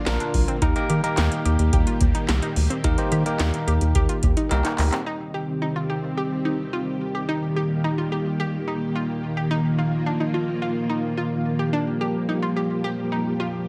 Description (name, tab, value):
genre	synth-pop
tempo	108 BPM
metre	4/4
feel	straight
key	Eb major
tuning	A4 = 441 Hz
part	string machine, cellos	sustained chords	0.0-13.7 s	D3 to G4	-28 LUFS	equal	ensemble chorus
part	analog pluck	arpeggios	0.0-13.6 s	C4 to G4	-32 LUFS	equal	chorus, tape echo
part	barky tine electric piano	accompaniment	0.1-5.0 s	Bb3 to C5	-29 LUFS	equal	none
part	rubbery square bass	bass	0.1-4.9 s	Bb1 to Eb3	-24 LUFS	equal	none
part	electro analog drum machine	drums	0.1-5.1 s	handclaps, hi-hat, kick drum, snare drum	-26 LUFS	equal	none
room	moderate digital room reverb, RT60 1.1 s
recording	none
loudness	-23 LUFS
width	mono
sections	0.0-5.1 A section; 5.1-13.7 B section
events	drum fill 4.5-5.1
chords	0.0 Bb; 0.6 Eb; 5.1 Cm; 7.3 Eb; 9.5 Bbsus4; 11.7 Gm7